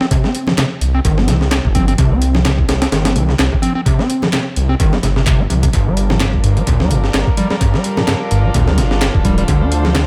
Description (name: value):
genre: breakbeat, breaks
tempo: 128 BPM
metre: 4/4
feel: swing 56% on 16ths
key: C dorian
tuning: A4 = 441 Hz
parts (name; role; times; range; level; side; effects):
- overdriven acid bass; riff; 0.0-10.0 s; G2 to D4; -20 LUFS; equal; tape echo
- breakbeat sampler-style drum kit; drums; 0.0-10.1 s; hi-hat, kick drum, snare drum; -19 LUFS; equal; studio reverb, analog delay
- congas; percussion; 0.5-10.1 s; none; -26 LUFS; equal; none
- electronic handclaps; drums; 0.6-10.1 s; none; -29 LUFS; equal; studio reverb, analog delay
- detuned saw bass; bass; 0.8-10.1 s; D1 to D2; -19 LUFS; equal; none
- warm studio string section; sustained chords; 5.7-10.1 s; D3 to C5; -26 LUFS; equal; vintage 12-bit sampler grit, sidechain pumping
room: light reverb, digital ambience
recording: echo-heavy mix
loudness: -15 LUFS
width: mono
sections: 0.0-10.1 A section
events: none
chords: 0.0 Cm; 5.7 Gm7; 9.5 Dm7